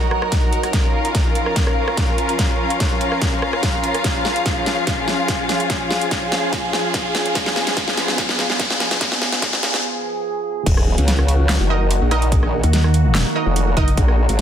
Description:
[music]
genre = heavy wobble dubstep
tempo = 145 BPM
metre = 4/4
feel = half-time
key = Eb minor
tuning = A4 = 440 Hz
[part]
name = evolving wavetable pad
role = sustained chords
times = 0.0-14.4 s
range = Db3 to Bb4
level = -25 LUFS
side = right 1 dB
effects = phaser, built-in reverb, sidechain pumping
[part]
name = riser and sub drop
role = sound effects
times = 1.4-12.3 s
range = none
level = -28 LUFS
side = equal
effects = none
[part]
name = warm studio string section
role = texture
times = 0.0-9.8 s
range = Cb4 to Gb5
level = -22 LUFS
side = left 1 dB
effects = sidechain pumping
[part]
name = dubstep drum kit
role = drums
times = 0.1-14.4 s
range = crash cymbal, handclaps, hi-hat, rim click, snare drum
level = -23 LUFS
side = equal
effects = high-pass filter on hats, studio reverb, high-pass filter on snare, high-pass filter on cymbals
[part]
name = electronic kick drum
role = drums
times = 0.3-14.1 s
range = none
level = -20 LUFS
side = equal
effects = studio reverb
[part]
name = formant-sweep wobble bass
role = bass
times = 10.7-14.4 s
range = Eb1 to Db2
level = -17 LUFS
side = equal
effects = chorus, overdrive
[part]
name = orchestra-hit-like synth stab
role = stabs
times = 11.7-13.9 s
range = Eb4 to Eb5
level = -25 LUFS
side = right 4 dB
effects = built-in reverb, tape echo
[part]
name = pulsing pluck wobble bass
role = bass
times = 12.6-14.0 s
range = Gb1 to Eb2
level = -15 LUFS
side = equal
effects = chorus, overdrive
[sound]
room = light reverb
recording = dense, heavily limited modern master, high-pass filter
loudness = -16 LUFS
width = side -9 dB against mid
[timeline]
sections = 0.0-10.7 A section; 10.7-14.4 B section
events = build-up 0.0-10.7; drum fill 0.0-9.8; filter sweep 0.0-10.7; riser 1.4-9.8; break 9.8-10.7; drop 10.7-14.4; impact 10.7-12.3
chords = 0.0 Ebm; 0.7 Bbm; 4.0 Db; 7.4 Fdim; 10.7 Ebm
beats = 0.32 | 0.73 1.15 1.56 1.98 | 2.39 2.80 3.22 3.63 | 4.04 4.46 4.87 5.29 | 5.70 6.11 6.53 6.94 | 7.35 7.77 8.18 8.60 | 9.01 9.42 9.84 10.25 | 10.66 11.08 11.49 11.91 | 12.32 12.73 13.15 13.56 | 13.97 14.39

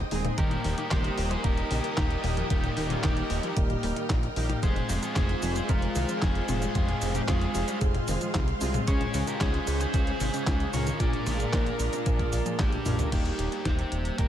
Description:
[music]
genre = italo disco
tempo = 113 BPM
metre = 4/4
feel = straight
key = Eb mixolydian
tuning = A4 = 439 Hz
[part]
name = string machine, full ensemble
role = sustained chords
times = 0.0-13.1 s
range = Ab3 to F6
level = -35 LUFS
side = equal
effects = ensemble chorus
[part]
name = fat analog bass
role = bass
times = 0.0-14.3 s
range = Eb1 to Db2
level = -31 LUFS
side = equal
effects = tube saturation
[part]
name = wide unison pluck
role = arpeggios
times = 0.1-13.1 s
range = Ab2 to Eb4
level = -38 LUFS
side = left 3 dB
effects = none
[part]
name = analog synth brass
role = stabs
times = 0.1-14.3 s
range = Bb2 to Bb4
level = -35 LUFS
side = right 2 dB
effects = chorus
[part]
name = detuned 8-bit digital drum machine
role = drums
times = 0.1-14.3 s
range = cabasa, crash cymbal, handclaps, hi-hat, snare drum, toms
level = -33 LUFS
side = left 2 dB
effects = none
[part]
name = smooth overdriven lead guitar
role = melody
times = 0.4-14.3 s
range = Db4 to D5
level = -34 LUFS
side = equal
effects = vintage 12-bit sampler grit, digital delay
[part]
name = electronic kick drum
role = drums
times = 0.4-14.3 s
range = none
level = -28 LUFS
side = equal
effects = none
[sound]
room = light reverb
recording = faint mains hum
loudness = -25 LUFS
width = side -11 dB against mid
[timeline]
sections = 0.0-13.1 A section; 13.1-14.3 B section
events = drum fill 12.7-13.1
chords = 0.4 Eb; 4.6 Fm; 8.9 Db; 11.0 Bb7; 13.1 Eb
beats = | 0.38 0.91 1.44 1.97 | 2.50 3.04 3.57 4.10 | 4.63 5.16 5.69 6.22 | 6.75 7.28 7.81 8.35 | 8.88 9.41 9.94 10.47 | 11.00 11.53 12.06 12.59 | 13.12 13.65 14.19

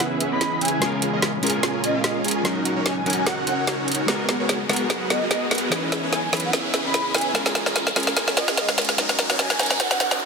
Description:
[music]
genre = future bass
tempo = 147 BPM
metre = 4/4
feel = swing 54% on 16ths, half-time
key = unclear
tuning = A4 = 440 Hz
[part]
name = ethereal airy pad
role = sustained chords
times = 0.0-10.3 s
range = D#2 to C#5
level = -33 LUFS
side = right 2 dB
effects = ensemble chorus, built-in reverb
[part]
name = supersaw chords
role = riff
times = 0.0-10.2 s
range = B3 to G#5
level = -26 LUFS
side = right 1 dB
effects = wide subtle chorus, low-pass filter
[part]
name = trap drum kit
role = drums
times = 0.0-10.2 s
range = hi-hat, snare drum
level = -23 LUFS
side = equal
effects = none
[part]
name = riser and noise sweep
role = sound effects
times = 1.1-10.3 s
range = none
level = -30 LUFS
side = right 1 dB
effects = none
[part]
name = breathy flute-like synth lead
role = melody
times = 0.3-10.2 s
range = D#5 to B5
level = -29 LUFS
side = equal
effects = ensemble chorus, ping-pong delay
[part]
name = electric guitar at the edge of break-up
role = accompaniment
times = 0.8-9.8 s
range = E3 to B4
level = -31 LUFS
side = left 3 dB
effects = tape echo
[sound]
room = moderate huge ambient reverb, RT60 8.2 s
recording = dense, heavily limited modern master, high-pass filter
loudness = -19 LUFS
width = side -5 dB against mid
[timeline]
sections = 0.0-10.3 A section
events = build-up 0.0-10.3; drum fill 0.0-10.2; filter sweep on supersaw synth 0.0-10.3; filter sweep 0.0-10.3; riser 1.1-10.2; noise sweep 9.0-10.3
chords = 0.0 C#m9; 0.8 A#m7; 2.5 D#m7; 4.1 G#m9; 5.7 C#m9; 7.3 A#m7; 9.0 D#m7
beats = 0.00 0.41 | 0.82 1.23 1.63 2.04 | 2.45 2.86 3.27 3.67 | 4.08 4.49 4.90 5.31 | 5.71 6.12 6.53 6.94 | 7.35 7.76 8.16 8.57 | 8.98 9.39 9.80 10.21

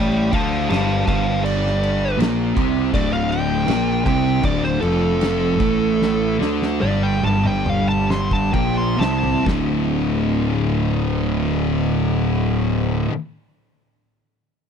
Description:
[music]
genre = stoner and doom metal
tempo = 64-81 BPM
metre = 4/4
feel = straight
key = D minor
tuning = A4 = 440 Hz
[part]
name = fuzz lead guitar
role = melody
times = 0.0-9.4 s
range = A4 to C6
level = -23 LUFS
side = equal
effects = distortion, slapback echo
[part]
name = fuzz guitar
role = riff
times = 0.0-13.1 s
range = D2 to D4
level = -24 LUFS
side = right 10 dB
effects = distortion
[part]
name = thick fuzz guitar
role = riff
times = 0.0-13.1 s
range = D2 to D4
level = -24 LUFS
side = left 10 dB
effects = distortion
[part]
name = thick fuzz guitar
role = riff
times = 0.0-13.1 s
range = D2 to D4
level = -26 LUFS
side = right 2 dB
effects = distortion
[part]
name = fuzz fingered electric bass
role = bass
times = 0.0-13.1 s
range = D1 to D2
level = -24 LUFS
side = equal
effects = overdrive
[part]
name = oversized low-tuned drum kit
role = drums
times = 0.3-9.7 s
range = crash cymbal, kick drum, snare drum, toms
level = -25 LUFS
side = equal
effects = none
[sound]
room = small room ambience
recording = dry, close 1970s-style studio recording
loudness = -17 LUFS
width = side -7 dB against mid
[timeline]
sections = 0.0-9.5 A section; 9.5-13.2 B section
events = lead electric guitar solo 0.0-9.5; slowing down 2.9-9.5; drum fill 6.0-9.5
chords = 0.0 Dm; 9.5 D5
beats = 0.69 1.44 2.19 | 2.93 3.68 4.44 5.21 | 6.00 6.81 7.66 8.53 | 9.45 10.40 11.34 12.29

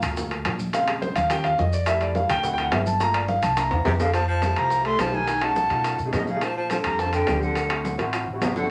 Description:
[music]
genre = Afro-Cuban jazz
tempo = 211 BPM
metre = 4/4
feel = straight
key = F major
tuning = A4 = 439 Hz
[part]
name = warm grand piano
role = accompaniment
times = 0.0-8.7 s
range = Db3 to Bb5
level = -28 LUFS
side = equal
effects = none
[part]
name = upright bass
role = bass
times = 0.0-8.7 s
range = G1 to B2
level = -31 LUFS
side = equal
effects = none
[part]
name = bongos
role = percussion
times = 0.0-8.6 s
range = none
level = -37 LUFS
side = equal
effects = none
[part]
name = congas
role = percussion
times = 0.0-8.7 s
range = none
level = -36 LUFS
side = equal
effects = none
[part]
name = maracas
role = percussion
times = 0.0-8.7 s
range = none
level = -45 LUFS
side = equal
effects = none
[part]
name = timbales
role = percussion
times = 0.0-8.6 s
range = none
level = -31 LUFS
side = equal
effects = none
[part]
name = breathy silver concert flute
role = melody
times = 3.9-8.7 s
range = D#5 to C6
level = -28 LUFS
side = equal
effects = none
[part]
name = breathy baritone saxophone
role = second line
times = 3.9-8.7 s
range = B2 to A3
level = -31 LUFS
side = equal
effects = none
[sound]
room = wet studio reverb, RT60 0.5 s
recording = none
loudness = -23 LUFS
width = mono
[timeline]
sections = 0.0-4.1 A section; 4.1-8.7 B section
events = grand piano solo 0.0-4.1; drum fill 3.7-4.1, 7.8-8.7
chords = 0.0 Gm7 (rootless); 0.7 Bbm7; 1.3 Eb9; 1.9 Fmaj7; 2.4 D7; 3.0 Gm7; 3.6 C7; 4.1 Fmaj7; 5.3 B13; 6.4 Bbmaj7; 7.6 D7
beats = 0.17 0.45 | 0.74 1.02 1.30 1.59 | 1.87 2.15 2.44 2.72 | 3.00 3.29 3.57 3.86 | 4.14 4.42 4.71 4.99 | 5.28 5.56 5.85 6.13 | 6.42 6.70 6.99 7.27 | 7.56 7.84 8.13 8.41 | 8.70

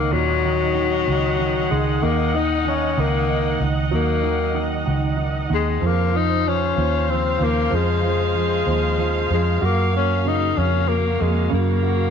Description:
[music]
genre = six-eight pop ballad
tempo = 63 BPM (dotted quarters)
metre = 6/8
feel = straight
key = unclear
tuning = A4 = 440 Hz
[part]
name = mellow tenor saxophone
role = melody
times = 0.0-12.1 s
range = Gb3 to Eb4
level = -22 LUFS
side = left 8 dB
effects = none
[part]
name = clear baby grand piano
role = accompaniment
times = 0.0-12.1 s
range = Bb2 to Gb4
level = -26 LUFS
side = right 12 dB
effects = none
[part]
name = warm studio string section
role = sustained chords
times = 0.0-12.1 s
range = Db3 to Gb5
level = -27 LUFS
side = right 2 dB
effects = none
[part]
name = vintage muted fingered electric bass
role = bass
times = 0.0-12.1 s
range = Db2 to Gb2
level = -22 LUFS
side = right 1 dB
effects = none
[sound]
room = light reverb, small room ambience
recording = 1960s-style stereo with parts hard left and right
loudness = -18 LUFS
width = side -7 dB against mid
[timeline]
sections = 0.0-12.1 A section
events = none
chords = 0.0 Ebm7; 5.8 Dbmaj7; 9.6 Gbmaj7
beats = | 0.12 1.07 | 2.02 2.98 | 3.92 4.87 | 5.82 6.77 | 7.72 8.67 | 9.62 10.57 | 11.52

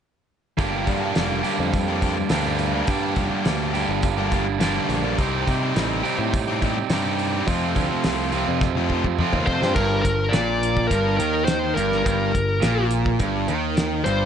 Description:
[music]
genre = classic rock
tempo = 105 BPM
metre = 4/4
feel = straight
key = G minor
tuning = A4 = 438 Hz
[part]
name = overdriven electric guitar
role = riff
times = 0.6-14.3 s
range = F2 to G4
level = -25 LUFS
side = right 12 dB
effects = none
[part]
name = sludgy distorted guitar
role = riff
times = 0.6-14.3 s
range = F2 to G4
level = -26 LUFS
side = left 9 dB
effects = overdrive
[part]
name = picked electric bass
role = bass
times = 0.6-14.3 s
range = F1 to C3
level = -27 LUFS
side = equal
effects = none
[part]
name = cloth-damped thuddy drum kit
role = drums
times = 0.6-14.2 s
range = crash cymbal, hi-hat, kick drum, snare drum, toms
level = -26 LUFS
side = equal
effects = none
[part]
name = bluesy overdriven lead guitar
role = melody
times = 9.5-14.3 s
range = Bb4 to D5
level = -24 LUFS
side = left 2 dB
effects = distortion, plate reverb, analog delay
[sound]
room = light reverb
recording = nothing above 10.4 kHz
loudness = -20 LUFS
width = side -8 dB against mid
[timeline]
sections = 0.6-9.8 A section; 9.8-14.3 B section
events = drum fill 8.6-9.8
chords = 0.6 Gm7; 5.2 Cm; 7.5 F; 9.8 Gm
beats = | 0.58 1.16 1.73 2.31 | 2.88 3.46 4.03 4.61 | 5.18 5.75 6.33 6.90 | 7.48 8.05 8.62 9.19 | 9.77 10.34 10.91 11.48 | 12.05 12.62 13.20 13.77

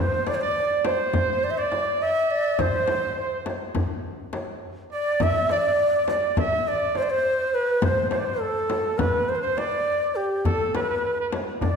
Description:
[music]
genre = Turkish makam ensemble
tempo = 206 BPM (eighths)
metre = 9/8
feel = straight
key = D makam huseyni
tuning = A4 = 440 Hz
[part]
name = breathy reedy ney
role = melody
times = 0.0-11.8 s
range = G4 to E5-24c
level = -23 LUFS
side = equal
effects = none
[part]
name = bright trumpet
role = second line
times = 0.0-11.8 s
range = A4 to E5-28c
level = -28 LUFS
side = right 4 dB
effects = none
[part]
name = darbuka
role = percussion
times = 0.3-11.7 s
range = none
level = -31 LUFS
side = right 1 dB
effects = none
[part]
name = frame drum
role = percussion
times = 0.3-11.8 s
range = none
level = -30 LUFS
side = left 4 dB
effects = none
[sound]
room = wet concert hall reverb, RT60 1.8 s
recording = recorded in a church or concert hall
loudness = -21 LUFS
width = side -6 dB against mid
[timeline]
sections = 0.0-11.8 A section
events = none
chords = none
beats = 0.27 0.56 0.85 1.14 1.43 1.72 2.01 2.30 | 2.59 2.88 3.17 3.46 3.75 4.04 4.33 4.62 4.92 | 5.21 5.50 5.79 6.08 6.37 6.66 6.95 7.24 7.54 | 7.83 8.12 8.41 8.70 8.99 9.28 9.57 9.87 10.16 | 10.45 10.74 11.03 11.32 11.61

